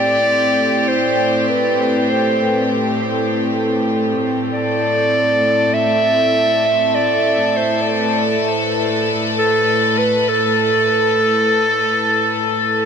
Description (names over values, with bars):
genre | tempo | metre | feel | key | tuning
ambient dub | free time | none | none | A minor | A4 = 440 Hz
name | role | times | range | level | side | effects
clear clarinet | melody | 0.0-12.9 s | A4 to E5 | -16 LUFS | right 1 dB | dub echo
rich studio string section | sustained chords | 0.0-12.9 s | A2 to B4 | -18 LUFS | left 1 dB | none
room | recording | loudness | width
moderate huge ambient reverb, RT60 4.3 s | none | -14 LUFS | side -7 dB against mid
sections
0.0-12.9 A section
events
none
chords
0.0 Am7